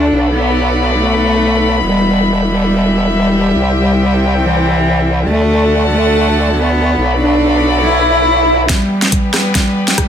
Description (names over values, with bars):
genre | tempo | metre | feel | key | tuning
heavy wobble dubstep | 140 BPM | 4/4 | swing 53% on 16ths, half-time | E minor | A4 = 442 Hz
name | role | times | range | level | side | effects
dark cello | melody | 0.0-10.1 s | E3 to E4 | -14 LUFS | equal | tape echo
rich chamber string section | sustained chords | 0.0-10.1 s | E2 to B5 | -18 LUFS | left 1 dB | sidechain pumping, low-pass filter
formant-sweep wobble bass | bass | 0.0-8.7 s | E1 to D2 | -16 LUFS | equal | chorus, overdrive
swell | sound effects | 8.0-8.7 s | none | -17 LUFS | right 1 dB | none
dubstep drum kit | drums | 8.7-10.1 s | hi-hat, rim click, snare drum | -15 LUFS | equal | overdrive, high-pass filter on cymbals, low-pass filter on cymbals, high-pass filter on snare, low-pass filter on snare, high-pass filter on hats, low-pass filter on hats
electronic kick drum | drums | 8.7-10.1 s | none | -16 LUFS | equal | overdrive
room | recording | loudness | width
light reverb | none | -10 LUFS | side -8 dB against mid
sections
0.0-8.7 A section; 8.7-10.1 B section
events
swell 8.0-8.7; build-up 8.7-10.1; drum fill 8.7-10.1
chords
0.1 Bm7; 1.8 Em; 3.5 C; 5.3 D; 7.0 Bm7; 8.7 Em